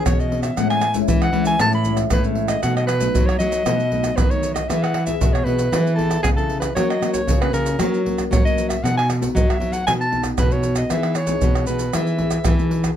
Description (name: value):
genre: samba and choro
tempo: 116 BPM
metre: 4/4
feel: straight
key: E major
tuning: A4 = 442 Hz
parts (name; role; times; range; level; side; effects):
- nylon-string guitar; accompaniment; 0.0-13.0 s; F#2 to G#4; -25 LUFS; left 4 dB; none
- mellow soprano saxophone; melody; 0.1-12.7 s; G#4 to B5; -23 LUFS; equal; none
- nylon-string guitar; bass; 0.1-12.9 s; A2 to F#3; -22 LUFS; equal; none
- maracas, surdo, pandeiro and tamborim; percussion; 0.1-13.0 s; none; -22 LUFS; right 1 dB; none
room: moderate small room ambience, RT60 0.5 s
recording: none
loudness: -17 LUFS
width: side -10 dB against mid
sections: 0.0-13.0 A section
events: none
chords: 0.0 C#m7; 0.6 Amaj7; 2.6 B7; 4.7 E; 6.8 F#; 8.8 B; 10.9 Emaj7